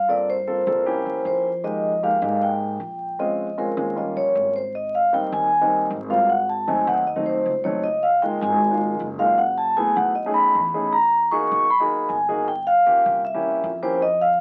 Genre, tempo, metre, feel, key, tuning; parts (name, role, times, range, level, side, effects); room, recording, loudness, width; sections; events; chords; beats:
Afro-Cuban jazz; 155 BPM; 4/4; straight; F minor; A4 = 440 Hz
vibraphone with soft mallets; melody; 0.0-14.4 s; Bb4 to Db6; -22 LUFS; equal
upright bass; bass; 0.0-14.4 s; Gb1 to Ab2; -36 LUFS; equal
warm grand piano; accompaniment; 0.1-14.0 s; Gb3 to A4; -29 LUFS; equal
moderate studio reverb, RT60 0.5 s; very old 78 rpm record, vinyl crackle; -21 LUFS; mono
0.0-4.7 A section; 4.7-14.4 B section
0.1 Gm11; 0.9 C7b9; 1.6 Fm11; 3.2 Bbm7; 4.0 Eb9; 4.7 Abmaj9; 6.3 Ab7b9; 7.8 Db69; 9.4 Gbm11; 10.2 B13; 10.9 Emaj9#11; 12.5 Gm7b5; 13.2 C7b9
| 0.08 0.47 0.86 1.25 | 1.64 2.03 2.41 2.80 | 3.19 3.58 3.97 4.35 | 4.74 5.13 5.52 5.90 | 6.29 6.68 7.06 7.45 | 7.84 8.22 8.61 9.00 | 9.38 9.77 10.16 10.54 | 10.93 11.32 11.70 12.09 | 12.48 12.86 13.25 13.64 | 14.02